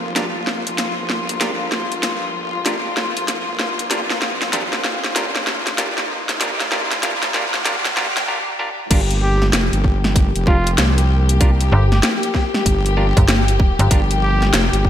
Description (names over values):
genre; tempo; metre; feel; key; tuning
glitch hop; 96 BPM; 4/4; swing 63% on 16ths; G minor; A4 = 440 Hz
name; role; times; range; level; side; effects
dark studio string section; sustained chords; 0.0-14.9 s; F3 to G4; -24 LUFS; left 3 dB; sidechain pumping
wobble bass; bass; 0.0-14.9 s; F1 to G2; -21 LUFS; equal; chorus, high-pass filter
riser; sound effects; 1.9-8.3 s; none; -31 LUFS; right 2 dB; none
overdriven clav; stabs; 0.2-14.0 s; D4 to Bb4; -26 LUFS; right 1 dB; sidechain pumping, low-pass filter, ping-pong delay
drum and bass drum kit; drums; 0.2-14.8 s; crash cymbal, hi-hat, snare drum; -21 LUFS; equal; overdrive, gated reverb
electronic kick drum; drums; 8.9-14.9 s; none; -15 LUFS; equal; overdrive
mellow trumpet; melody; 9.2-14.5 s; F4 to G4; -25 LUFS; equal; ping-pong delay
slap-like FM bass; bass; 11.7-13.9 s; G1; -15 LUFS; equal; none
room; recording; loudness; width
moderate lush hall reverb, RT60 1.8 s; bright 1980s-style digital production, high-pass filter; -16 LUFS; side -10 dB against mid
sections
0.0-8.9 A section; 8.9-14.9 B section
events
build-up 0.0-8.9; drum fill 0.0-8.3; break 8.3-8.9; drop 8.9-14.9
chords
0.0 Gm7